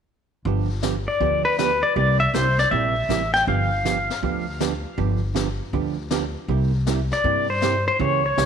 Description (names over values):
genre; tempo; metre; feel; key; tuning
country, western swing; 159 BPM; 4/4; swing 65% on 8ths; G mixolydian; A4 = 440 Hz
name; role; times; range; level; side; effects
hollow-body jazz guitar; accompaniment; 0.5-8.5 s; C3 to G4; -26 LUFS; right 13 dB; none
upright bass; bass; 0.5-8.5 s; G1 to G2; -25 LUFS; left 1 dB; none
vintage brush drum kit; drums; 0.5-8.5 s; brushed snare drum, hi-hat, kick drum, snare drum; -32 LUFS; left 7 dB; none
pedal steel guitar; melody; 1.1-8.5 s; B4 to G5; -20 LUFS; left 2 dB; none
room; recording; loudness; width
moderate echo chamber reverb, RT60 1.6 s, small room ambience; 1960s-style stereo with parts hard left and right; -19 LUFS; side -7 dB against mid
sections
0.5-8.5 A section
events
none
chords
0.5 G7; 2.0 C7; 3.5 G7; 6.5 C9